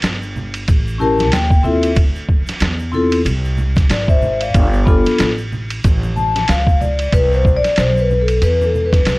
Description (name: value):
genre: hip hop, jazz-hop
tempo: 93 BPM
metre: 4/4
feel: swing 58% on 16ths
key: C major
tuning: A4 = 440 Hz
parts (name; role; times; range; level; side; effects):
- upright bass; bass; 0.0-9.2 s; G1 to E2; -18 LUFS; equal; none
- trip hop sampler-style drum kit; drums; 0.0-9.2 s; hi-hat, kick drum, ride cymbal, snare drum; -17 LUFS; equal; none
- tube shaker and congas; percussion; 0.0-9.2 s; none; -28 LUFS; right 2 dB; none
- vibraphone with soft mallets; accompaniment; 1.0-9.2 s; B3 to A5; -16 LUFS; left 2 dB; plate reverb
room: light reverb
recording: worn, warbling old tape, cassette tape, warbly pitch drift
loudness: -13 LUFS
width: side -21 dB against mid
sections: 0.0-7.1 A section; 7.1-9.2 B section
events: vibraphone fill 0.7-2.0, 5.8-7.1; vibraphone solo 7.1-9.2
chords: 0.0 N.C.; 0.7 A7b9; 2.0 Dm9; 4.5 G9; 7.1 Cmaj7